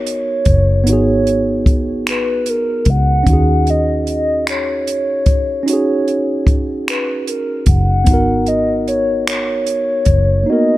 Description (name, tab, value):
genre	slow six-eight R&B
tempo	50 BPM (dotted quarters)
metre	6/8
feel	straight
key	unclear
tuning	A4 = 439 Hz
part	hollow clarinet-like synth lead	melody	0.0-10.8 s	Bb4 to Gb5	-18 LUFS	left 1 dB	chorus
part	tine electric piano	accompaniment	0.0-10.8 s	Bb3 to Bb4	-19 LUFS	right 2 dB	none
part	vintage muted fingered electric bass	bass	0.0-10.4 s	Gb1 to Eb2	-16 LUFS	equal	none
part	compact cocktail drum kit	drums	0.1-10.3 s	finger snaps, hi-hat, kick drum	-16 LUFS	equal	none
room	light reverb, small room reverb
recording	dark, warm production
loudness	-13 LUFS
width	side -16 dB against mid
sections	0.0-10.8 A section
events	none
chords	0.0 Abm9; 3.3 Ebm7; 8.1 Abm9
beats	| 0.87 2.07 | 3.27 4.47 | 5.67 6.87 | 8.07 9.27 | 10.47